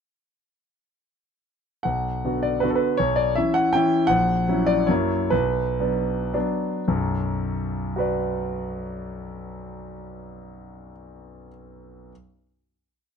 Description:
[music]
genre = classical, romantic triple-time dance for piano with dotted rhythms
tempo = 105-174 BPM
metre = 3/4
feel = rubato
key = B minor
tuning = A4 = 443 Hz
[part]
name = clear concert grand piano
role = solo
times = 1.8-12.1 s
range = A#1 to G5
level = -22 LUFS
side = equal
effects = none
[sound]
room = light reverb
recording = dark, warm production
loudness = -21 LUFS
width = side -6 dB against mid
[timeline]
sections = 1.9-6.9 A section; 6.9-10.0 final chord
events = slowing down 3.5-6.9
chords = 1.9 Bm; 3.0 C#m7b5/B; 4.1 F#7/A#; 4.9 F#7; 5.3 Bm

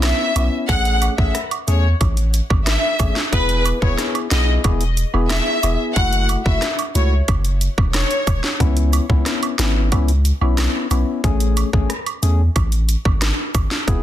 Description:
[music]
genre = dancehall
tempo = 91 BPM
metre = 4/4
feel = straight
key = unclear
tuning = A4 = 441 Hz
[part]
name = warm symphonic violin section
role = melody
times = 0.0-8.4 s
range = B4 to F#5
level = -22 LUFS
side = left 1 dB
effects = ping-pong delay
[part]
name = percussive organ stab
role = accompaniment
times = 0.0-14.0 s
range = A3 to G#4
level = -24 LUFS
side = left 4 dB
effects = chorus
[part]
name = punchy sub bass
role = bass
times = 0.0-14.0 s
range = E1 to E2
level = -18 LUFS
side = equal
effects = none
[part]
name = island pop drum kit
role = drums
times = 0.0-14.0 s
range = hi-hat, kick drum, rim click, snare drum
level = -20 LUFS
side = equal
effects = none
[part]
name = cabasa and woodblock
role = percussion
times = 0.4-13.7 s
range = none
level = -28 LUFS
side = right 11 dB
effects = none
[sound]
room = little or no reverb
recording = dense, heavily limited modern master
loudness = -16 LUFS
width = side -12 dB against mid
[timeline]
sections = 0.0-14.0 A section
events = none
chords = 0.0 C#m7; 0.7 Amaj7; 3.3 E; 6.0 F#m7; 8.6 C#m7; 11.2 Amaj7

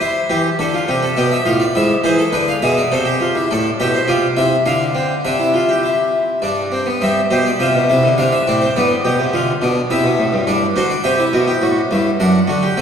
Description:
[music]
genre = classical, baroque-style 3-part fugue for harpsichord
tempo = 104 BPM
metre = 3/4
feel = straight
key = A minor, C major from 3.5 s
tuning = A4 = 440 Hz
[part]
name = harpsichord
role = solo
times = 0.0-12.8 s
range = F#2 to F#5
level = -14 LUFS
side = equal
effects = none
[sound]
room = wet concert hall reverb, RT60 2.4 s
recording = heard from further back in the room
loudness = -14 LUFS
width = side -7 dB against mid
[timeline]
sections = 0.0-3.5 A section; 3.5-7.0 B section; 7.0-12.8 C section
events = none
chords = 0.0 Am/E; 1.2 Bm7b5; 1.8 E7/G#; 2.9 Am/C; 3.5 Am; 4.7 Dm; 5.2 Gsus4/C; 6.4 G; 7.0 C/G; 8.2 Dm7/C; 8.8 G7; 9.9 C; 10.5 G; 11.6 A5; 12.2 D/F#

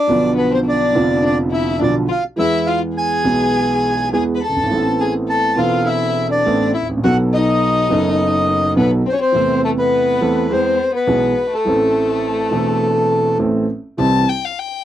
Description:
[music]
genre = tango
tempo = 104 BPM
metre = 4/4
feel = rubato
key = A harmonic minor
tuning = A4 = 440 Hz
[part]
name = bandoneon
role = melody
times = 0.0-13.4 s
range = A4 to B5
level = -18 LUFS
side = equal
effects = none
[part]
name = warm violin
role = second line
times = 0.0-14.8 s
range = A3 to A5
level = -22 LUFS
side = left 8 dB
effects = none
[part]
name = warm grand piano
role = accompaniment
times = 0.1-14.2 s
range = E1 to A4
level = -17 LUFS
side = right 2 dB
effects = none
[sound]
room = light reverb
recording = dry, close 1970s-style studio recording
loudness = -14 LUFS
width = side -12 dB against mid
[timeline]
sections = 0.0-14.0 A section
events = none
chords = 0.1 Bdim; 2.4 E; 4.7 Amadd9; 7.0 B7; 9.3 Am/E; 10.5 E; 11.7 Am; 14.0 C

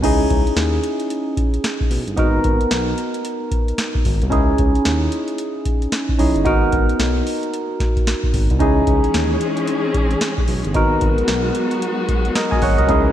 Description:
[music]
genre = R&B, new jack swing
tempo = 112 BPM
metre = 4/4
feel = swing 61% on 16ths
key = C# dorian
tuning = A4 = 440 Hz
[part]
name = barky tine electric piano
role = accompaniment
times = 0.0-13.1 s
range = B3 to G#5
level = -20 LUFS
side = right 1 dB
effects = phaser
[part]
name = smooth synth bass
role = bass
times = 0.0-13.1 s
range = G1 to D#2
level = -21 LUFS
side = equal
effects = none
[part]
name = booming analog drum machine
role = drums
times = 0.0-13.1 s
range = crash cymbal, hi-hat, kick drum, snare drum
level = -20 LUFS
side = equal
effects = none
[part]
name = warm studio string section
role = sustained chords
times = 8.6-13.1 s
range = E3 to G#4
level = -23 LUFS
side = left 3 dB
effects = none
[sound]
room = moderate lush hall reverb, RT60 2.6 s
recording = big arena sound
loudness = -16 LUFS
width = side -11 dB against mid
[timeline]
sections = 0.0-13.1 A section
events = none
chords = 0.0 C#madd9; 2.2 G#m7; 4.3 C#madd9; 6.5 G#m7; 8.6 C#madd9; 10.7 G#m7

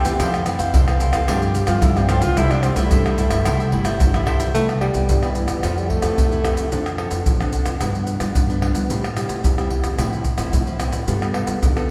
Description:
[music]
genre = samba and choro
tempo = 110 BPM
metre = 4/4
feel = straight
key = C major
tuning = A4 = 442 Hz
[part]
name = breathy tenor saxophone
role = second line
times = 0.0-7.0 s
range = Eb3 to G4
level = -27 LUFS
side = equal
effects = none
[part]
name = cavaquinho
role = accompaniment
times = 0.0-4.5 s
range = D4 to G5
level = -29 LUFS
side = equal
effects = none
[part]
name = nylon-string guitar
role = accompaniment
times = 0.0-11.9 s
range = F2 to A4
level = -28 LUFS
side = equal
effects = none
[part]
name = upright bass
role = bass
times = 0.0-11.9 s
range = G1 to G3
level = -26 LUFS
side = equal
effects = none
[part]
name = maracas, surdo, pandeiro and tamborim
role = percussion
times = 0.0-11.9 s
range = none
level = -22 LUFS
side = equal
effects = none
[sound]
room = wet concert hall reverb, RT60 2.0 s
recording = recorded in a church or concert hall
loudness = -20 LUFS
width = mono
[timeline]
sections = 0.0-4.5 A section; 4.5-11.9 B section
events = tenor saxophone solo 0.0-4.5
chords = 0.2 Fmaj7; 1.3 G9sus4; 2.4 C6; 4.5 Cmaj7; 5.6 Fmaj7; 6.7 Dm7/F; 7.8 G7; 8.9 Am7; 10.0 Fmaj7/A; 11.1 G9

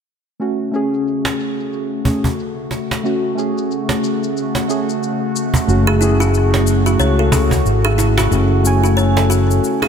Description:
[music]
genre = organic downtempo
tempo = 91 BPM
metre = 4/4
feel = swing 60% on 16ths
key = F# minor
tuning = A4 = 439 Hz
[part]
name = muted felt-like synth keys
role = accompaniment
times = 0.4-9.9 s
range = A3 to G#5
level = -20 LUFS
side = right 1 dB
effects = chorus, ping-pong delay
[part]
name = warbly tape-like pad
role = sustained chords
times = 0.8-9.9 s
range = C#3 to F#4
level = -22 LUFS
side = left 2 dB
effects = chorus, built-in reverb
[part]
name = cabasa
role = drums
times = 0.4-9.8 s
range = none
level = -28 LUFS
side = left 9 dB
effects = low-pass filter on perc
[part]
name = cajon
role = percussion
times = 1.2-9.9 s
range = none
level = -22 LUFS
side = right 2 dB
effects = none
[part]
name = fretless electric bass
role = bass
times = 5.7-9.6 s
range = F#1 to C#2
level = -15 LUFS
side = equal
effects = none
[part]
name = kalimba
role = arpeggios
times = 5.9-9.9 s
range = E4 to C#5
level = -18 LUFS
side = equal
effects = ping-pong delay
[sound]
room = light reverb, small room ambience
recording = none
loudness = -14 LUFS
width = side -7 dB against mid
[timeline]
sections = 0.4-9.9 A section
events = none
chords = 0.4 F#m

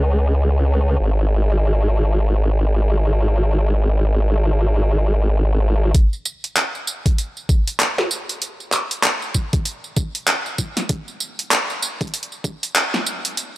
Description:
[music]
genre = glitch hop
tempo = 97 BPM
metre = 4/4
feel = swing 60% on 16ths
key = unclear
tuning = A4 = 440 Hz
[part]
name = formant-sweep wobble bass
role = bass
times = 0.0-5.9 s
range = G#1 to C#2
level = -16 LUFS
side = equal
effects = chorus, overdrive
[part]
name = electronic kick drum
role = drums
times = 5.9-12.6 s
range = none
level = -18 LUFS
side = equal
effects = overdrive
[part]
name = pop drum kit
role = drums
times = 5.9-13.5 s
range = handclaps, hi-hat, snare drum, tambourine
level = -20 LUFS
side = equal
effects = overdrive, low-pass filter on hats, low-pass filter on perc, low-pass filter on snare, low-pass filter on room
[sound]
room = little or no reverb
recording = dry, gritty hardware recording, high-pass filter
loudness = -17 LUFS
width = side -17 dB against mid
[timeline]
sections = 0.0-5.9 A section; 5.9-13.6 B section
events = build-up 5.9-13.6; filter sweep 5.9-13.6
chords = none

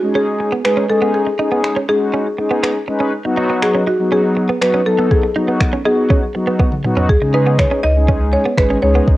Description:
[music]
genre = dance-pop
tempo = 121 BPM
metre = 4/4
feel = straight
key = unclear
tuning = A4 = 440 Hz
[part]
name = buzzing marimba with medium mallets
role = melody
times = 0.0-9.2 s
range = F#4 to D#5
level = -18 LUFS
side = equal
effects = analog delay
[part]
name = mellow synth brass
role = accompaniment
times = 0.0-9.2 s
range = F#3 to B4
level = -18 LUFS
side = left 1 dB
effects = chorus, sidechain pumping, cassette tape
[part]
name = direct-recorded clean electric guitar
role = riff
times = 0.2-9.1 s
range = B3 to D#4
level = -22 LUFS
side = right 3 dB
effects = analog chorus, cassette tape
[part]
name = smooth R&B drum kit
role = drums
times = 0.6-9.2 s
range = finger snaps, kick drum, toms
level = -16 LUFS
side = equal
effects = overdrive
[part]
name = warm sub bass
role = bass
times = 7.1-9.2 s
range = G#1 to C#3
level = -16 LUFS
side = equal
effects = sidechain pumping
[sound]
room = light reverb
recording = home recording on cassette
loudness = -13 LUFS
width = side -16 dB against mid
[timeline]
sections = 0.0-9.2 A section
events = drum fill 6.6-7.1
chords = 0.0 C#sus2; 3.1 B; 7.1 C#sus2

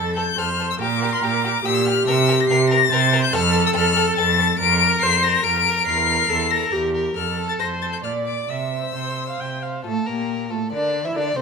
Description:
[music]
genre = quick classical-period movement for string quartet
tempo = 141 BPM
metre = 3/4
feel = rubato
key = unclear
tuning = A4 = 440 Hz
[part]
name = warm violin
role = melody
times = 0.0-11.4 s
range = F4 to D7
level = -21 LUFS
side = left 9 dB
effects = none
[part]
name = rich violin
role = second line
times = 0.0-11.4 s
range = G4 to E5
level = -29 LUFS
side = left 2 dB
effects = none
[part]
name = warm viola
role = accompaniment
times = 0.0-11.4 s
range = A3 to G5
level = -23 LUFS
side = right 1 dB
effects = none
[part]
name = rich cello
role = bass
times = 0.0-11.4 s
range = E2 to E3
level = -24 LUFS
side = right 4 dB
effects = none
[sound]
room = moderate large studio reverb, RT60 1.2 s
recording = minimal, uncompressed stereo recording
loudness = -17 LUFS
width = side -5 dB against mid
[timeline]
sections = 0.0-9.9 A section; 9.9-11.4 B section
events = none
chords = 0.0 F; 0.8 Gm/Bb; 2.1 C5; 3.3 F; 4.6 Bbadd9/F; 5.9 C7/E; 7.2 F; 8.0 Bb; 8.5 C; 9.9 Gm69

